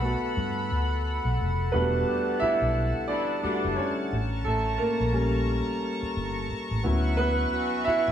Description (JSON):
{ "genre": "R&B, neo-soul", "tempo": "88 BPM", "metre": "4/4", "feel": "swing 59% on 16ths", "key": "E dorian", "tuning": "A4 = 439 Hz", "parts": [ { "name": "warm baby grand piano", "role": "accompaniment", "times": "0.0-8.1 s", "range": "F#3 to E5", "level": "-27 LUFS", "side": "right 1 dB", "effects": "none" }, { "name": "chorused pulse-width pad", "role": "sustained chords", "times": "0.0-8.1 s", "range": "A4 to C#6", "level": "-33 LUFS", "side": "left 2 dB", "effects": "none" }, { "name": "vintage muted fingered electric bass", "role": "bass", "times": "0.0-8.1 s", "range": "E1 to G2", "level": "-28 LUFS", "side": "equal", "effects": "none" }, { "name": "clear horn section", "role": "stabs", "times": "2.1-8.1 s", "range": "D3 to G4", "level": "-34 LUFS", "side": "left 2 dB", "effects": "none" } ], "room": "wet stone room reverb, RT60 1.3 s", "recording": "band playing live in one room", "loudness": "-24 LUFS", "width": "side -9 dB against mid", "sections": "0.0-8.1 A section", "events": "grand piano solo 0.0-8.1", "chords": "0.0 Gmaj9; 1.7 Em11; 4.1 A7b9; 6.8 Dmaj13" }